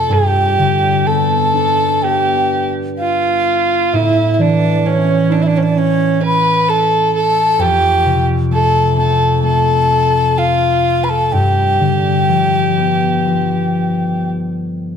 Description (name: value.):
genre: celtic folk, Celtic slow air.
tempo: 64 BPM.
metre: 4/4.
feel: uneven beats, rubato.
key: G mixolydian.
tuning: A4 = 437 Hz.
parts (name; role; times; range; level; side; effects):
mellow hollow baroque flute; melody; 0.0-14.3 s; C#5 to B5; -16 LUFS; left 3 dB; none.
dark fiddle; second line; 0.0-14.3 s; C#4 to B4; -18 LUFS; right 7 dB; none.
concert harp; accompaniment; 0.0-15.0 s; F2 to F4; -16 LUFS; equal; none.
room: moderate scoring stage reverb, RT60 1.7 s.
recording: none.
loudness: -12 LUFS.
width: side -7 dB against mid.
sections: 0.1-15.0 A section.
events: none.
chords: 0.1 Gadd9; 3.9 A; 7.6 F; 11.3 G7.